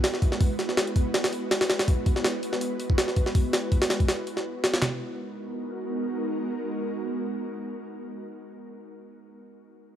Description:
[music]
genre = drum and bass, jungle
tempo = 163 BPM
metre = 4/4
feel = swing 54% on 16ths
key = G# minor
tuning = A4 = 440 Hz
[part]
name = ethereal airy pad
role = sustained chords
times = 0.0-8.5 s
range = G#3 to B4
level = -31 LUFS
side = right 1 dB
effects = ensemble chorus, built-in reverb, vintage 12-bit sampler grit
[part]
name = jungle sampler-style drum kit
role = drums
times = 0.0-4.9 s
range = handclaps, hi-hat, kick drum, snare drum, toms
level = -23 LUFS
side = equal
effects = none
[sound]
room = light reverb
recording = dry, gritty hardware recording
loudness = -24 LUFS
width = side -10 dB against mid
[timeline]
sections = 0.0-4.8 A section; 4.8-7.8 B section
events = none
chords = 0.0 Eadd9/G#; 4.8 G#m9

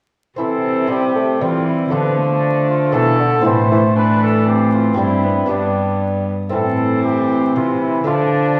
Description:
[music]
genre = classical, renaissance-style consort dance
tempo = 117 BPM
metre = 3/4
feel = straight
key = C major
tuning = A4 = 440 Hz
[part]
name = warm cornet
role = melody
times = 0.4-8.6 s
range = D4 to C5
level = -24 LUFS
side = equal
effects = none
[part]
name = warm viola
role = second line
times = 0.4-8.6 s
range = A3 to D4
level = -25 LUFS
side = equal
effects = none
[part]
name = lute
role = accompaniment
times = 0.4-8.6 s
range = G2 to G4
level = -24 LUFS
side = equal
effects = none
[part]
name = warm bassoon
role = accompaniment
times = 0.4-8.6 s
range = D3 to A3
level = -23 LUFS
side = equal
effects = none
[part]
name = warm cello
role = bass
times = 0.4-8.6 s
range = G2 to E3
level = -22 LUFS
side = equal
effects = none
[sound]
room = wet recital hall reverb, RT60 1.6 s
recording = heard from further back in the room, vinyl crackle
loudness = -17 LUFS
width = mono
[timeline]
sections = 0.4-8.6 A section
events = none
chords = 0.4 C; 1.9 Dm; 3.5 Am; 5.0 Gsus4; 5.5 G; 6.5 Am; 8.1 Dm

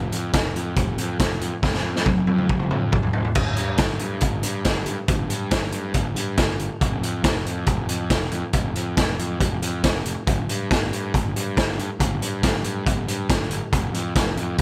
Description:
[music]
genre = indie rock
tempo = 139 BPM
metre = 4/4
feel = straight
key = unclear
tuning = A4 = 440 Hz
[part]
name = fuzz picked electric bass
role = bass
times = 0.0-14.6 s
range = F1 to G2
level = -29 LUFS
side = equal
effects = overdrive
[part]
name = raw garage drum kit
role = drums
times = 0.1-14.6 s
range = crash cymbal, hi-hat, kick drum, snare drum, toms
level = -24 LUFS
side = equal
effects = none
[sound]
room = little or no reverb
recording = none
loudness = -23 LUFS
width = mono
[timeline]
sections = 0.0-3.4 A section; 3.4-14.6 A section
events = drum fill 1.6-3.4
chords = none

